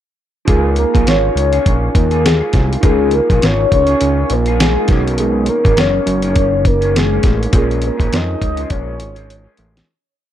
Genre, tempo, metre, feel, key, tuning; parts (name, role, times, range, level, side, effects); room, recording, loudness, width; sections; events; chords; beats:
indie pop, bedroom pop; 102 BPM; 4/4; swing 60% on 16ths; Db mixolydian; A4 = 444 Hz
soft octave-layered synth lead; melody; 0.5-9.6 s; Ab4 to Eb5; -17 LUFS; left 1 dB; phaser, lush chorus, analog delay
electric guitar through a small old amp; accompaniment; 0.5-9.9 s; Bb2 to Ab4; -24 LUFS; left 1 dB; analog chorus, warbly pitch drift
mellow tine electric piano; accompaniment; 0.5-9.9 s; Db4 to Bb4; -24 LUFS; right 5 dB; medium stereo tremolo, cassette tape
fat analog bass; bass; 0.5-9.8 s; Gb1 to F2; -17 LUFS; equal
dusty soul sampler-style drum kit; drums; 0.5-9.9 s; hi-hat, kick drum, snare drum; -15 LUFS; equal
light reverb; dark, warm production; -12 LUFS; side -11 dB against mid
0.5-9.9 verse
fade-out 7.5-9.9; drum fill 8.7-9.9
0.5 Db6; 4.9 Cbmaj9; 7.5 Bbm7
| 0.48 1.06 1.65 2.24 | 2.83 3.42 4.01 4.59 | 5.18 5.77 6.36 6.95 | 7.53 8.12 8.71 9.29